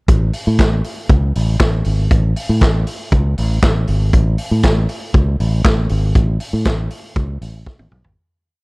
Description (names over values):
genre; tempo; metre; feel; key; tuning
disco; 119 BPM; 4/4; straight; A major; A4 = 440 Hz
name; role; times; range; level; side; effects
fingered electric bass; bass; 0.1-8.1 s; G#1 to A2; -16 LUFS; equal; none
vintage drum kit; drums; 0.1-8.2 s; handclaps, hi-hat, kick drum, snare drum, toms; -16 LUFS; equal; none
room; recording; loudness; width
little or no reverb; dark, warm production; -13 LUFS; side -30 dB against mid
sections
0.1-8.2 groove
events
fade-out 6.2-8.2; drum fill 7.7-8.2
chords
none